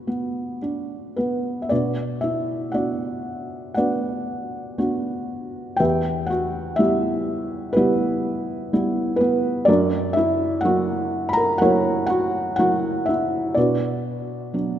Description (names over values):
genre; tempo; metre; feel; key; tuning
classical, lyrical solo piano; 61 BPM; 4/4; uneven beats, rubato; B harmonic minor; A4 = 437 Hz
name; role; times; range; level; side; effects
felt-muted upright piano; solo; 0.0-14.8 s; E2 to B5; -20 LUFS; equal; none
room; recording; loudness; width
wet concert hall reverb, RT60 2.5 s; none; -20 LUFS; side -10 dB against mid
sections
0.0-1.7 A section; 1.7-14.8 B section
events
none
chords
0.0 Bm; 5.8 Em; 9.7 F#7; 13.6 Bm